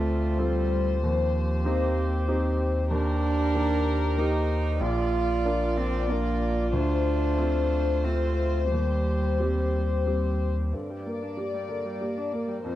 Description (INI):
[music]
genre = neoclassical piano and strings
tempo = 94 BPM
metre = 3/4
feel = rubato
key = unclear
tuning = A4 = 437 Hz
[part]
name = dark studio violin section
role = melody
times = 0.0-12.8 s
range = Bb4 to D5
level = -31 LUFS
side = left 5 dB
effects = none
[part]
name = clear cello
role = second line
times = 0.0-12.8 s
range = F3 to F4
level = -31 LUFS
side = right 5 dB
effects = none
[part]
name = clear baby grand piano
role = accompaniment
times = 0.0-12.8 s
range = Bb1 to Bb4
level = -32 LUFS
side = equal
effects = none
[part]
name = dark viola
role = accompaniment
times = 0.0-12.8 s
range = D3 to G4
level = -36 LUFS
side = right 2 dB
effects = none
[part]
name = hand-pumped harmonium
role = sustained chords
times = 0.0-10.7 s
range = G3 to D5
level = -39 LUFS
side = equal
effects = none
[part]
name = saturated sub bass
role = bass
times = 0.0-10.7 s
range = Bb1 to Eb2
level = -26 LUFS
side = equal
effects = none
[sound]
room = little or no reverb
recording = dry, close 1970s-style studio recording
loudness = -24 LUFS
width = side -13 dB against mid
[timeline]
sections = 0.0-10.7 A section; 10.7-12.8 B section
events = none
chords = 0.0 Dm7; 1.0 Cm/Eb; 2.9 Eb; 4.8 Bb; 6.7 Dm7; 8.7 Cm/Eb; 10.7 Gm